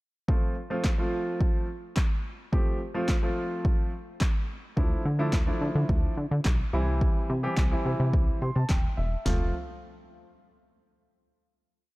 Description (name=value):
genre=dance-pop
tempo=107 BPM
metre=4/4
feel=straight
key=F major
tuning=A4 = 440 Hz
part: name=warm grand piano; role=accompaniment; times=0.3-9.5 s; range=E3 to C6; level=-32 LUFS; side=equal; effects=sidechain pumping
part: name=deep house drum kit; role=drums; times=0.3-9.4 s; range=handclaps, kick drum, snare drum, toms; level=-26 LUFS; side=equal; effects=none
part: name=plucky analog bass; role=bass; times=4.8-9.5 s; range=Eb1 to D3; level=-27 LUFS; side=equal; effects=sidechain pumping
room=little or no reverb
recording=dark, warm production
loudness=-25 LUFS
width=side -20 dB against mid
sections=0.3-9.3 verse; 9.3-11.5 final chord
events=grand piano fill 8.1-9.3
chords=0.3 F; 4.8 Dmadd9; 6.7 C; 9.3 F